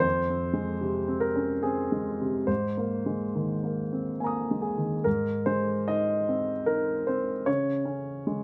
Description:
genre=neoclassical minimalist piano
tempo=69-77 BPM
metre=3/4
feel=rubato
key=unclear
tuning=A4 = 440 Hz
part: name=warm grand piano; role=solo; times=0.0-8.4 s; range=F2 to Eb6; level=-28 LUFS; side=equal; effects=none
room=moderate studio reverb, RT60 0.7 s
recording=none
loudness=-28 LUFS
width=mono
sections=0.0-5.1 A section; 5.1-8.4 B section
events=none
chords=0.0 Fm; 2.5 Abadd9; 7.5 Db5

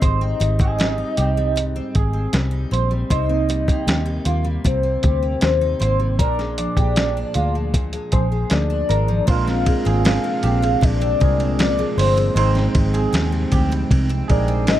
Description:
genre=indie pop, bedroom pop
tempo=78 BPM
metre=4/4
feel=straight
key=unclear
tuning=A4 = 443 Hz
part: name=soft octave-layered synth lead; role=melody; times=0.0-14.8 s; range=C5 to F5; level=-23 LUFS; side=left 1 dB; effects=tremolo, phaser, wide subtle chorus, tape echo
part: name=electric guitar through a small old amp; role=second line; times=0.0-14.7 s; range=F4 to C5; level=-28 LUFS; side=right 6 dB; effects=analog chorus, tape echo
part: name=picked steel-string acoustic guitar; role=accompaniment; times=0.0-14.8 s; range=Ab2 to Eb4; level=-27 LUFS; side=left 2 dB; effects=analog chorus, warbly pitch drift
part: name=vintage muted fingered electric bass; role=bass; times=0.0-14.8 s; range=G1 to Eb2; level=-20 LUFS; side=equal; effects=none
part: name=dusty soul sampler-style drum kit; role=drums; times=0.0-14.8 s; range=hi-hat, kick drum, ride cymbal, snare drum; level=-20 LUFS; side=equal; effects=none
part: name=barky tine electric piano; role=accompaniment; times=9.3-14.8 s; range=Ab3 to G5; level=-26 LUFS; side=right 4 dB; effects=cassette tape
part: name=warbly tape-like pad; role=sustained chords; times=10.2-14.8 s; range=C3 to G5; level=-30 LUFS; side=equal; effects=none
room=little or no reverb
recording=dark, warm production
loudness=-16 LUFS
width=side -12 dB against mid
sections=0.0-9.3 A section; 9.3-14.8 B section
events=none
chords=0.0 Abmaj7; 3.1 Cm7; 6.2 Bb7; 9.3 Bb9; 12.4 Abmaj7

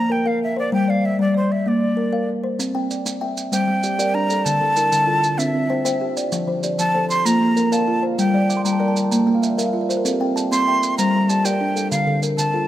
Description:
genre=southern african traditional, mbira-style interlocking cycle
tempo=129 BPM (dotted quarters)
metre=12/8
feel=straight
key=C mixolydian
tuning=A4 = 438 Hz
part: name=breathy bright jazz flute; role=melody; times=0.0-12.7 s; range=C5 to C6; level=-21 LUFS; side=right 1 dB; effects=none
part: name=kalimba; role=arpeggios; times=0.0-12.7 s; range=D3 to A5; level=-20 LUFS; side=left 2 dB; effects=none
part: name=maracas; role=percussion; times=2.6-12.5 s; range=none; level=-28 LUFS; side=right 5 dB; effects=none
part: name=kalimba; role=arpeggios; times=2.8-12.7 s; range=D3 to D6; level=-25 LUFS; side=right 4 dB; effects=none
room=light reverb, studio ambience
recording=rough home demo mix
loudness=-17 LUFS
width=side -13 dB against mid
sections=0.0-2.6 A section; 2.6-12.7 A section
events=kalimba fill 8.3-10.1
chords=0.0 Bb5; 0.7 G5; 1.7 Bb; 2.6 C; 3.5 Gm; 4.5 Dm; 5.4 C; 6.3 F; 7.3 Bb; 8.2 Gm; 9.1 Bb; 10.1 C; 11.0 Gm; 11.9 Dm

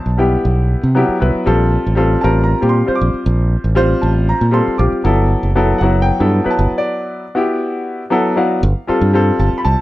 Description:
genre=electric jazz fusion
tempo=235 BPM (eighths)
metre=7/8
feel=straight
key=unclear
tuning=A4 = 440 Hz
part: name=clear baby grand piano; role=accompaniment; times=0.0-9.8 s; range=F#3 to D6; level=-15 LUFS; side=left 1 dB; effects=none
part: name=modern bright fingered electric bass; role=bass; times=0.1-9.7 s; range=F#1 to C3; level=-14 LUFS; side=equal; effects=none
room=light reverb, small room ambience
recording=dark, warm production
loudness=-12 LUFS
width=side -16 dB against mid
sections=0.0-8.6 A section; 8.6-9.8 B section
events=grand piano fill 0.7-1.5, 7.9-8.6; break 6.8-8.6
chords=0.0 Cmaj7; 1.5 Bbsus2; 5.0 Gmaj9; 8.6 G9sus4

